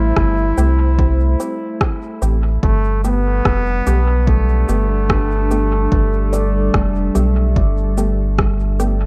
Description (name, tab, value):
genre	ambient dub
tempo	73 BPM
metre	4/4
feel	straight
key	unclear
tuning	A4 = 438 Hz
part	warm trombone	melody	0.0-8.4 s	A3 to E4	-25 LUFS	equal	dub echo
part	warbly tape-like pad	sustained chords	0.0-9.1 s	G3 to E5	-28 LUFS	equal	chorus, built-in reverb, phaser
part	handpan	arpeggios	0.0-9.1 s	G3 to E5	-30 LUFS	equal	dub echo
part	filtered dub chord stab	stabs	0.0-9.0 s	A3 to G4	-30 LUFS	equal	chorus, dub echo
part	soft dub sub bass	bass	0.0-9.1 s	F1 to C2	-19 LUFS	equal	none
part	electronic kick drum	drums	0.2-8.6 s	none	-20 LUFS	equal	studio ambience
part	electronic rim click and cabasa	drums	0.2-9.0 s	none	-28 LUFS	equal	studio ambience, dub echo
room	digital ambience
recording	none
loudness	-17 LUFS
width	mono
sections	0.0-9.1 A section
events	none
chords	0.0 Am7; 2.6 Gadd9